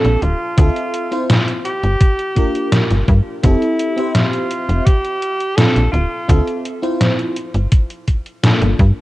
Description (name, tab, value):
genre	vaporwave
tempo	84 BPM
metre	4/4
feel	straight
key	unclear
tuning	A4 = 435 Hz
part	bright alto saxophone	melody	0.0-6.6 s	E4 to A4	-22 LUFS	equal	tape echo
part	FM electric piano with soft pad layer	accompaniment	0.0-8.7 s	Bb3 to E5	-21 LUFS	equal	lush chorus, analog delay
part	slap-like FM bass	bass	0.0-8.9 s	D1 to G2	-15 LUFS	equal	none
part	detuned 8-bit digital drum machine	drums	0.0-8.9 s	hi-hat, snare drum	-17 LUFS	equal	gated reverb
part	electronic kick drum	drums	0.6-8.9 s	none	-12 LUFS	equal	none
room	light reverb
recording	cassette tape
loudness	-14 LUFS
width	side -17 dB against mid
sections	0.0-9.0 A section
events	none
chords	0.2 Dm9; 1.7 Gm7; 3.4 Fmaj9; 4.9 Bbmaj9; 5.9 Dm9; 7.4 Gm7